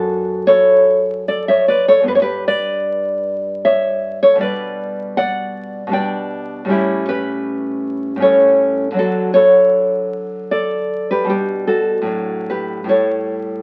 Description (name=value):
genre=romantic piece for solo classical guitar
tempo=78 BPM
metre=3/4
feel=uneven beats, rubato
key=D major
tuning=A4 = 440 Hz
part: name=nylon-string guitar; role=solo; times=0.0-13.6 s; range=F#2 to G5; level=-17 LUFS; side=equal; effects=none
room=moderate studio reverb, RT60 0.9 s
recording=very old 78 rpm record, vinyl crackle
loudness=-17 LUFS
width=mono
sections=0.0-13.6 A section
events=none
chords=0.0 D/F#; 2.1 G; 4.4 G/B; 6.7 A9; 9.0 D; 11.3 G/B; 12.9 A7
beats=0.47 1.27 | 2.08 2.88 3.65 | 4.41 5.18 5.94 | 6.70 7.47 8.22 | 8.97 9.73 10.52 | 11.30 12.08 12.90